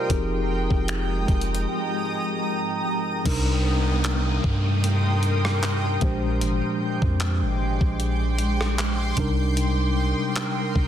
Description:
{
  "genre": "contemporary R&B",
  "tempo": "76 BPM",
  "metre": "4/4",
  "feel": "swing 54% on 16ths",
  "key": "C minor",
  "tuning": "A4 = 437 Hz",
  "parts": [
    { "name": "mellow tine electric piano", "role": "accompaniment", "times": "0.0-10.9 s", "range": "Bb2 to G5", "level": "-27 LUFS", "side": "left 1 dB", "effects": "medium stereo tremolo" },
    { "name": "granular cloud pad", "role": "sustained chords", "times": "0.0-10.9 s", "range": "Ab3 to Eb6", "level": "-28 LUFS", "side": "right 1 dB", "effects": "built-in reverb, sidechain pumping" },
    { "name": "warm 808-style bass", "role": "bass", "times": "0.1-10.9 s", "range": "F1 to G2", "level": "-24 LUFS", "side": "equal", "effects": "none" },
    { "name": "crisp 8-bit digital drum machine", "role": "drums", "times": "0.1-10.9 s", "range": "crash cymbal, finger snaps, handclaps, hi-hat, kick drum, rim click", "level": "-27 LUFS", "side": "equal", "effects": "soft clipping on snare" },
    { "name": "downlifter", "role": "sound effects", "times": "3.3-9.6 s", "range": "none", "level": "-34 LUFS", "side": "right 2 dB", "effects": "none" }
  ],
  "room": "light reverb",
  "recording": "dense, heavily limited modern master",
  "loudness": "-21 LUFS",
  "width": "side -10 dB against mid",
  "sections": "0.0-3.3 A section; 3.3-10.9 B section",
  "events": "break 1.7-3.3",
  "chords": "0.1 Fm11; 3.3 Cm7; 6.0 Bb13; 9.2 Cm7",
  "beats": "| 0.10 0.89 1.68 2.47 | 3.26 4.05 4.83 5.62 | 6.41 7.20 7.99 8.78 | 9.57 10.36"
}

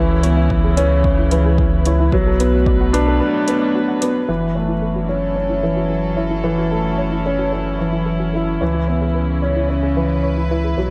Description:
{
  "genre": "piano and strings electronica",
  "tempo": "111 BPM",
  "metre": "4/4",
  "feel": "straight",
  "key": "F# minor",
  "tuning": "A4 = 443 Hz",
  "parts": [
    { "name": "warm chamber string section", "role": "sustained chords", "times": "0.0-10.9 s", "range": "B2 to B4", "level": "-28 LUFS", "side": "equal", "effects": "sidechain pumping" },
    { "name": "dark grand piano", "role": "riff", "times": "0.0-10.9 s", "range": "E3 to E4", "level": "-21 LUFS", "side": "equal", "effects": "tape echo" },
    { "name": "warm sub bass", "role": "bass", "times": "0.0-10.9 s", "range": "F#1 to C#2", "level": "-23 LUFS", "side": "equal", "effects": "sidechain pumping" },
    { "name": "soft round pluck", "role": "arpeggios", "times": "0.2-10.8 s", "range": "E4 to F#5", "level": "-31 LUFS", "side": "equal", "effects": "subtle chorus, sidechain pumping, tape echo" },
    { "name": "electronic hi-hat", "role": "drums", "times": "0.2-4.1 s", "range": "none", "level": "-30 LUFS", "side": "equal", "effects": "overdrive" },
    { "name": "electronic kick drum", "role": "drums", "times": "0.5-2.8 s", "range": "none", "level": "-22 LUFS", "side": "equal", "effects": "overdrive" }
  ],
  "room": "light reverb, studio reverb",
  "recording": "dark, warm production",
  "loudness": "-18 LUFS",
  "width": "mono",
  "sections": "0.0-4.3 A section; 4.3-10.9 B section",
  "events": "break 3.2-4.3; filter sweep on synth arpeggio sound 4.3-10.9",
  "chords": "0.0 C#m7; 2.1 Bm7; 4.3 F#m7; 8.6 C#m7",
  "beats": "0.51 1.04 1.59 | 2.13 2.67 3.21 3.75 | 4.29 4.83 5.37 5.91 | 6.45 6.99 7.53 8.07 | 8.61 9.15 9.69 10.23 | 10.78"
}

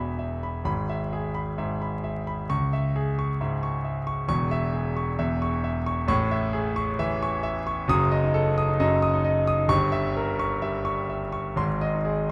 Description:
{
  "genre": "classical, virtuoso piano study",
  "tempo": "133 BPM",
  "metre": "4/4",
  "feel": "rubato",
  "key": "unclear",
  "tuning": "A4 = 440 Hz",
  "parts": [
    { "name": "clear concert grand piano", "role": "solo", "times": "0.0-12.3 s", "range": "E1 to D#6", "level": "-26 LUFS", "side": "equal", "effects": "none" }
  ],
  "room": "moderate recital hall reverb, RT60 1.6 s",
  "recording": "close, detailed microphones, vinyl crackle",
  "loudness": "-26 LUFS",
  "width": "mono",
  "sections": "0.0-12.3 A section",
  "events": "none",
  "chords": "0.0 E; 0.7 E/G#; 2.5 C#m; 4.3 C#m/E; 6.1 Amaj7; 7.9 D#dim/F#; 9.7 Gdim7; 11.6 G#",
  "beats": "0.19 | 0.66 1.12 1.58 2.04 | 2.50 2.95 3.40 3.85 | 4.30 4.75 5.20 5.65 | 6.09 6.54 6.99 7.44 | 7.89 8.34 8.79 9.24 | 9.70 10.16 10.62 11.09 | 11.58 12.06"
}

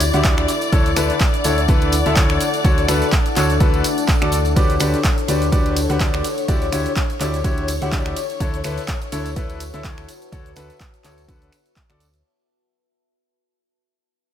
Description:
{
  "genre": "piano house",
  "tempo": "125 BPM",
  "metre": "4/4",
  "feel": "swing 56% on 16ths",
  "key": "unclear",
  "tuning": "A4 = 440 Hz",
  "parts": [
    { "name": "dark symphonic string section", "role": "sustained chords", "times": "0.0-12.3 s", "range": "C#5 to D5", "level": "-27 LUFS", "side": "left 5 dB", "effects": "vintage 12-bit sampler grit, sidechain pumping" },
    { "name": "solid FM bass", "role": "bass", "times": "0.0-12.2 s", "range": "D2", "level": "-22 LUFS", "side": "right 1 dB", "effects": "tube saturation, sidechain pumping" },
    { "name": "punchy analog drum machine", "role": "drums", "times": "0.0-12.2 s", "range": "finger snaps, handclaps, hi-hat, ride cymbal, shaker", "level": "-25 LUFS", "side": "right 1 dB", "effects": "none" },
    { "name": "tambourine", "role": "percussion", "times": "0.0-12.2 s", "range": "none", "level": "-34 LUFS", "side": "right 3 dB", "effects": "none" },
    { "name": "deep dark ambient pad", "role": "texture", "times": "0.0-12.2 s", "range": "D4 to A5", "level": "-26 LUFS", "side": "left 2 dB", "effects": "chorus, built-in reverb, sidechain pumping" },
    { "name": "clear grand piano", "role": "riff", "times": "0.1-12.0 s", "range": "D3 to F#5", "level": "-23 LUFS", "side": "left 1 dB", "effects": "sidechain pumping, ping-pong delay" },
    { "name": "electronic kick drum", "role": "drums", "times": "0.2-11.9 s", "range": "none", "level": "-19 LUFS", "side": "equal", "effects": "none" }
  ],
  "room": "light reverb, digital ambience",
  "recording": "none",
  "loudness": "-16 LUFS",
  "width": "side -10 dB against mid",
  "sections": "0.0-12.2 A section",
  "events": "drop 0.0-12.2; fade-out 4.6-12.2",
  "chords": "0.0 Em9/D; 0.7 Bm11/D; 4.6 Gmaj7/D; 6.5 Em9/D; 8.4 Bm11/D",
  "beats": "0.24 | 0.72 1.20 1.68 2.16 | 2.64 3.12 3.60 4.08 | 4.56 5.04 5.52 6.00 | 6.48 6.96 7.44 7.92 | 8.40 8.88 9.36 9.84 | 10.32 10.80 11.28 11.76"
}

